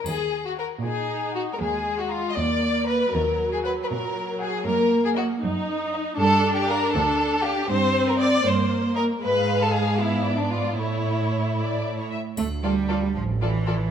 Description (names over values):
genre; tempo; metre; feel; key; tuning
cinematic, playful, whimsical film cue; 78 BPM (dotted quarters); 6/8; straight; Eb minor, D minor from 6.2 s; A4 = 440 Hz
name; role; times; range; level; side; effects
rich chamber violin section; second line; 0.0-13.8 s; D4 to Eb5; -24 LUFS; left 2 dB; none
rich symphonic cello section; bass; 0.1-13.9 s; D2 to A3; -27 LUFS; right 3 dB; none
triangle; percussion; 0.1-1.1, 12.4-13.4 s; none; -42 LUFS; equal; none
rich studio violin section; melody; 0.6-13.8 s; C#5 to Bb5; -34 LUFS; left 5 dB; none
warm studio viola section; accompaniment; 0.8-13.7 s; Gb3 to F4; -27 LUFS; right 2 dB; none
rich chamber double bass section; bass; 12.4-13.8 s; A1 to D2; -26 LUFS; right 2 dB; none
room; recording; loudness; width
moderate scoring stage reverb, RT60 1.7 s; minimal, uncompressed stereo recording; -21 LUFS; side -8 dB against mid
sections
0.1-12.4 A section; 12.4-13.9 B section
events
none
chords
0.1 Ebm; 1.6 Bb7/Eb; 3.1 Ebm; 4.7 Ebm/Gb; 6.2 G5; 7.7 Eb/G; 9.2 G#dim7; 10.8 A; 12.4 Dm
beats
| 0.06 0.84 | 1.60 2.37 | 3.13 3.90 | 4.66 5.42 | 6.18 6.94 | 7.69 8.45 | 9.22 9.99 | 10.78 11.58 | 12.38 13.15